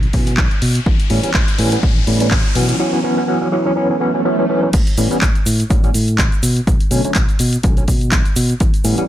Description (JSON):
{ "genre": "filtered disco house", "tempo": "124 BPM", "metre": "4/4", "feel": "swing 56% on 16ths", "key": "unclear", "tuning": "A4 = 439 Hz", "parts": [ { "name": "fingered electric bass", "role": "bass", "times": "0.0-9.0 s", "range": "A1 to B2", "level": "-18 LUFS", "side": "equal", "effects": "sidechain pumping, low-pass filter" }, { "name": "house drum kit", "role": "drums", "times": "0.0-9.1 s", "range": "crash cymbal, handclaps, hi-hat", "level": "-22 LUFS", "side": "equal", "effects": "small room ambience" }, { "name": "riser and swell", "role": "sound effects", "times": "0.0-4.7 s", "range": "none", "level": "-26 LUFS", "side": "right 2 dB", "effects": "none" }, { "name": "overdriven tine electric piano", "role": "accompaniment", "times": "0.1-9.0 s", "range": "D3 to C#4", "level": "-18 LUFS", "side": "equal", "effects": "fast tremolo, phaser, sidechain pumping, low-pass filter" }, { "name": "electronic kick drum", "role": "drums", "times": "0.1-8.7 s", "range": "none", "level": "-16 LUFS", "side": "equal", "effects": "small room ambience" }, { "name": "egg shaker", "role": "percussion", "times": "4.7-9.1 s", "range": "none", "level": "-28 LUFS", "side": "right 2 dB", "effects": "sidechain pumping on perc, low-pass filter on perc" } ], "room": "light reverb", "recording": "dry, gritty hardware recording", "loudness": "-13 LUFS", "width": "side -13 dB against mid", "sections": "0.0-4.7 A section; 4.7-9.1 B section", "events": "build-up 0.0-4.7; riser 0.0-2.8; filter sweep 0.0-4.7; swell 3.9-4.7; drop 4.7-9.1", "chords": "0.0 Bsus2; 0.9 A7; 2.6 Bsus2; 4.7 A7; 6.4 Bm9", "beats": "0.38 | 0.86 1.35 1.83 2.32 | 2.80 3.28 3.77 4.25 | 4.74 5.22 5.70 6.19 | 6.67 7.16 7.64 8.12 | 8.61" }